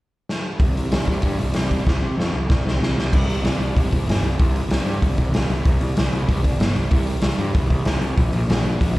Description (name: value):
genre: punk rock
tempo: 190 BPM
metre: 4/4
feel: straight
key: unclear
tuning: A4 = 440 Hz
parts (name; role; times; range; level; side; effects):
- raw garage drum kit; drums; 0.3-9.0 s; crash cymbal, hi-hat, kick drum, snare drum; -20 LUFS; equal; none
- fuzz picked electric bass; bass; 0.6-9.0 s; G1 to C3; -21 LUFS; equal; overdrive
room: little or no reverb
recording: live gig heard through the venue's PA, club reverb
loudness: -18 LUFS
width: side -18 dB against mid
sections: 0.6-3.1 A section; 3.1-9.0 B section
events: drum fill 0.3-0.6, 1.9-3.1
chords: none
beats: 0.28 | 0.60 0.92 1.23 1.55 | 1.87 2.18 2.50 2.81 | 3.13 3.45 3.76 4.08 | 4.39 4.71 5.03 5.34 | 5.66 5.97 6.29 6.60 | 6.92 7.23 7.55 7.86 | 8.18 8.49 8.81